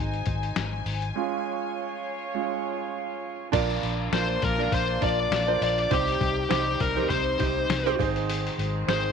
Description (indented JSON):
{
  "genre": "piano-driven pop",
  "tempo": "101 BPM",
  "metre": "4/4",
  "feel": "swing 56% on 16ths",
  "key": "unclear",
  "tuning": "A4 = 439 Hz",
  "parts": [
    { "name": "clear concert grand piano", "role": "accompaniment", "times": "0.0-9.1 s", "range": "Ab2 to D5", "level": "-29 LUFS", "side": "right 11 dB", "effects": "none" },
    { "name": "warm studio string section", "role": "sustained chords", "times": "0.0-9.1 s", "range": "C3 to Ab5", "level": "-34 LUFS", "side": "left 2 dB", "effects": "none" },
    { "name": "vintage muted fingered electric bass", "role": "bass", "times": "0.0-9.1 s", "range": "Ab1 to C2", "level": "-30 LUFS", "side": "left 1 dB", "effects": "none" },
    { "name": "lo-fi sampler-style drum kit", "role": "drums", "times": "0.1-9.0 s", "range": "crash cymbal, hi-hat, kick drum, snare drum", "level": "-30 LUFS", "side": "left 5 dB", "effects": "overdrive" },
    { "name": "bluesy overdriven lead guitar", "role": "melody", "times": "4.1-9.1 s", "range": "G4 to D5", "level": "-26 LUFS", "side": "left 5 dB", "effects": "distortion" }
  ],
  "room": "light reverb",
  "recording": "1960s-style stereo",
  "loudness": "-24 LUFS",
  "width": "side -6 dB against mid",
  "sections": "0.0-3.5 A section; 3.5-9.1 B section",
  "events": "grand piano solo 0.0-3.5; break 1.2-3.5",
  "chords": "0.0 Ab; 1.2 Db; 3.5 Bb; 5.9 Cm; 8.0 Ab"
}